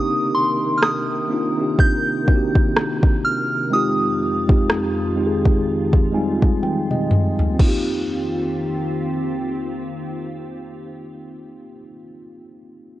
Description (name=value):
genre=contemporary R&B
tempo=62 BPM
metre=4/4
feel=swing 58% on 16ths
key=Eb major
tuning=A4 = 440 Hz
part: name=soft synth bell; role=melody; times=0.0-6.6 s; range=C6 to G6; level=-22 LUFS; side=right 1 dB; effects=chorus
part: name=mellow tine electric piano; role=accompaniment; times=0.0-13.0 s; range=G3 to Ab5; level=-22 LUFS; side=equal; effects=medium stereo tremolo
part: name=glassy FM pad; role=sustained chords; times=0.0-11.7 s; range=F2 to A#4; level=-28 LUFS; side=equal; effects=ensemble chorus, built-in reverb, sidechain pumping
part: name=smooth R&B drum kit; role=drums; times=0.8-7.9 s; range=crash cymbal, kick drum, rim click, toms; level=-18 LUFS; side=equal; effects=overdrive, vintage 12-bit sampler grit
room=light reverb, digital ambience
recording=worn, warbling old tape, cassette tape, warbly pitch drift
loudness=-17 LUFS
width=side -15 dB against mid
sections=0.0-7.6 A section; 7.6-11.5 B section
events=tine electric piano fill 5.7-7.6; drum fill 6.6-7.6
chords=0.0 Cm7; 3.7 Fm9; 7.6 Eb69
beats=0.82 1.79 2.75 | 3.72 4.69 5.66 6.62 | 7.59 8.56 9.53 10.49